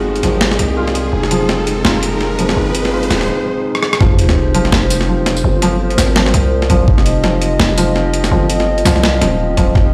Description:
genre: half-time drum and bass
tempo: 167 BPM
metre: 4/4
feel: swing 58% on 16ths, half-time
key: F minor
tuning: A4 = 439 Hz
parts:
  - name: dark analog pad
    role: sustained chords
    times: 0.0-9.9 s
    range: Ab3 to Eb5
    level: -22 LUFS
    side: equal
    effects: lush chorus, sidechain pumping
  - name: felt-muted upright piano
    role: arpeggios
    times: 0.0-9.9 s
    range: F3 to F4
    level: -22 LUFS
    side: equal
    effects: low-pass filter, digital delay
  - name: growling 808-style bass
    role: bass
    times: 0.0-9.9 s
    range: Eb1 to C2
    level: -19 LUFS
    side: equal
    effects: none
  - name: riser and sub drop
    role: sound effects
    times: 0.0-5.4 s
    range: none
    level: -23 LUFS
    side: equal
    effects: none
  - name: boom bap sampler-style drum kit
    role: drums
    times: 0.2-9.8 s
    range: hi-hat, rim click, snare drum, tambourine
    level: -20 LUFS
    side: equal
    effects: overdrive
  - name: electronic kick drum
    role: drums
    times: 4.0-4.1, 6.7-7.0, 9.6-9.8 s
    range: none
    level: -14 LUFS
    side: equal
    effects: overdrive
room: moderate digital room reverb, RT60 1.1 s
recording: played on a big sound system in a bare room, stone room reverb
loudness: -14 LUFS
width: mono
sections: 0.0-4.0 A section; 4.0-9.9 B section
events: build-up 0.0-4.0; riser 0.0-3.3; drum fill 3.7; drop 4.0-9.9; impact 4.0-5.4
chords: 0.0 Fm; 4.0 F5

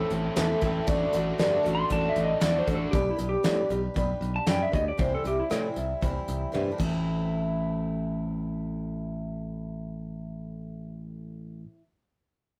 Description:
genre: folk rock and heartland rock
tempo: 117 BPM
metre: 4/4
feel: straight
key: A dorian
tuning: A4 = 440 Hz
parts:
  - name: electric slide guitar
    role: melody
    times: 0.0-5.8 s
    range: E4 to C6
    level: -32 LUFS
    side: equal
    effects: none
  - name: picked twelve-string acoustic guitar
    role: accompaniment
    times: 0.0-11.8 s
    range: A2 to B4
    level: -34 LUFS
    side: equal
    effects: none
  - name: raw garage guitar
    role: riff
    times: 0.0-2.9 s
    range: A2 to F#4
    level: -36 LUFS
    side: equal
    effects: overdrive
  - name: modern bright picked electric bass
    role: bass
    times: 0.1-11.6 s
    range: A1 to A2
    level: -33 LUFS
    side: equal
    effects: none
  - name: soft brush drum kit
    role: drums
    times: 0.1-6.9 s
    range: hi-hat, kick drum, ride cymbal, rim click, snare drum, toms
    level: -33 LUFS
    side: equal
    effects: none
room: moderate studio reverb, RT60 0.6 s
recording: rough rehearsal-room recording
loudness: -28 LUFS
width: mono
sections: 0.0-7.0 A section; 7.0-11.2 B section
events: electric slide guitar solo 0.0-7.0; drum fill 6.5-7.0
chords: 0.0 Am; 0.9 D/A; 2.9 G/B; 5.0 C; 6.8 Am

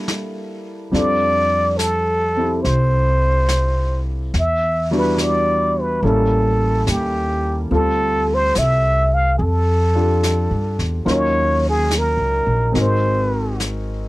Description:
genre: jazz ballad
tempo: 71 BPM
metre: 4/4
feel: swing 69% on 8ths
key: F major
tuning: A4 = 438 Hz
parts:
  - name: warm concert grand piano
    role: accompaniment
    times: 0.0-14.1 s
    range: Gb3 to Bb4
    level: -23 LUFS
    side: equal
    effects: none
  - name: vintage brush drum kit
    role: drums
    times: 0.1-14.1 s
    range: brushed snare drum, hi-hat, snare drum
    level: -29 LUFS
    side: left 1 dB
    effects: none
  - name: trumpet with plunger mute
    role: melody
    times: 0.9-13.6 s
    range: G4 to F5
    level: -19 LUFS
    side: equal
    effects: none
  - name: upright bass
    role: bass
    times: 0.9-14.1 s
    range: Ab1 to G2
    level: -20 LUFS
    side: equal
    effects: none
room: little or no reverb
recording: dry, close 1970s-style studio recording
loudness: -16 LUFS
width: side -18 dB against mid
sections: 0.9-14.1 A section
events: none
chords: 0.0 Gm69; 0.9 F69; 4.3 Em9; 6.0 A7b9; 7.7 Dm11; 11.1 Ebm7; 12.7 Ab9

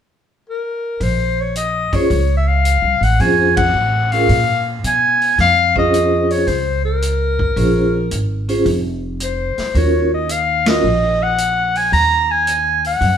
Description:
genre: jazz, small-group swing and bop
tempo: 110 BPM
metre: 4/4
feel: swing 68% on 8ths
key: Bb minor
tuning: A4 = 440 Hz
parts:
  - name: breathy clarinet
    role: melody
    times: 0.5-13.2 s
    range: Bb4 to Bb5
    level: -16 LUFS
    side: left 2 dB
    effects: none
  - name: upright bass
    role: bass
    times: 1.0-13.2 s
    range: F1 to Cb3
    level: -19 LUFS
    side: equal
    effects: none
  - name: vintage drum kit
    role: drums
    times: 1.0-13.2 s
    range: hi-hat, kick drum, ride cymbal, snare drum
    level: -25 LUFS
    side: equal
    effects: none
  - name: vibraphone with medium mallets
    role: accompaniment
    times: 1.9-10.8 s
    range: Db4 to C5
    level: -18 LUFS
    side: right 1 dB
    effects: none
room: moderate stone room reverb, RT60 1.0 s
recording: band playing live in one room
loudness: -14 LUFS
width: side -8 dB against mid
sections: 0.0-1.0 A section; 1.0-13.2 B section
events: band accent 3.5, 10.6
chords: 0.0 N.C.; 1.0 Bbm9; 9.7 Ebm9

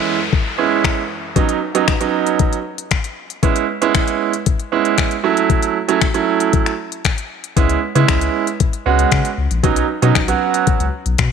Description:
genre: dance-pop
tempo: 116 BPM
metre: 4/4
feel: straight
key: C# minor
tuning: A4 = 440 Hz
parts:
  - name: bright concert grand piano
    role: accompaniment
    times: 0.0-10.8 s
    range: F#3 to F#4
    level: -17 LUFS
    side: right 9 dB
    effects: sidechain pumping
  - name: downlifter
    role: sound effects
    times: 0.0-3.4 s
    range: none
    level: -27 LUFS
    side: left 3 dB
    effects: none
  - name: smooth R&B drum kit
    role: drums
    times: 0.3-11.3 s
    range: finger snaps, hi-hat, kick drum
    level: -18 LUFS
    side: left 5 dB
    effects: none
  - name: saturated sub bass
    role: bass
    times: 7.6-11.3 s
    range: A#1 to C#3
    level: -18 LUFS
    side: left 2 dB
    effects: sidechain pumping
room: moderate echo chamber reverb, RT60 2.1 s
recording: 1960s-style stereo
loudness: -15 LUFS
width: side -6 dB against mid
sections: 0.0-11.3 A section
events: none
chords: 0.0 C#m7; 1.4 Badd9; 3.4 C#m7; 5.2 F#m7; 7.6 C#m7; 9.6 Badd9

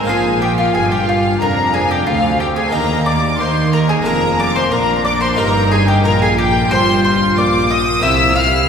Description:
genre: classical, baroque-style concerto movement with solo episodes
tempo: 90 BPM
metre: 4/4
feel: straight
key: Eb major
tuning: A4 = 441 Hz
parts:
  - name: mandolin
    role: melody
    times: 0.0-8.7 s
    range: F4 to F5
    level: -19 LUFS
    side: left 1 dB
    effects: none
  - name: harpsichord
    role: accompaniment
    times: 0.0-8.7 s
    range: D2 to Ab4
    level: -24 LUFS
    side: left 2 dB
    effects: none
  - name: rich chamber viola section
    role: accompaniment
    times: 0.0-8.7 s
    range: Bb3 to F4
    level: -22 LUFS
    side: right 2 dB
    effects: none
  - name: clear chamber cello section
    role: bass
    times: 0.0-8.7 s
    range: D2 to Eb3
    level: -20 LUFS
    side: equal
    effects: none
  - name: rich symphonic double bass section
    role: bass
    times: 0.0-8.7 s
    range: F1 to Eb2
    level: -21 LUFS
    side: right 2 dB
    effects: none
  - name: rich chamber violin section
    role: melody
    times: 0.1-8.7 s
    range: F5 to F6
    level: -20 LUFS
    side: left 2 dB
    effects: none
  - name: rich chamber violin section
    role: second line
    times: 0.1-8.7 s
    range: F5 to F6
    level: -20 LUFS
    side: left 2 dB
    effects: none
room: wet church reverb, RT60 3.1 s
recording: recorded in a church or concert hall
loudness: -12 LUFS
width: side -7 dB against mid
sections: 0.0-8.7 A section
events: none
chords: 0.1 Bb; 2.7 Eb; 4.1 Bb7/F; 5.4 Eb/G; 8.0 C7

